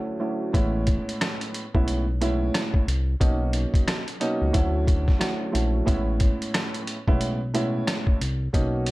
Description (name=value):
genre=hip hop, boom-bap hip-hop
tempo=90 BPM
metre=4/4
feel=swing 62% on 16ths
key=A major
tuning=A4 = 442 Hz
part: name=dark grand piano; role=accompaniment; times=0.0-8.9 s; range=D2 to E4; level=-27 LUFS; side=right 1 dB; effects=cassette tape, high-pass filter, low-pass filter
part: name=smooth synth bass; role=bass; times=0.5-8.9 s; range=A1 to D2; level=-25 LUFS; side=equal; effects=none
part: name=boom bap sampler-style drum kit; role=drums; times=0.5-8.9 s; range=hi-hat, kick drum, rim click, snare drum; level=-24 LUFS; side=equal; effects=none
room=little or no reverb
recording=none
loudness=-22 LUFS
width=side -19 dB against mid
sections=0.5-8.9 A section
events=break 0.0-0.5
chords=0.0 Dmaj9; 0.5 Amaj9; 3.2 Bmaj9; 4.5 Dmaj9; 5.9 Amaj9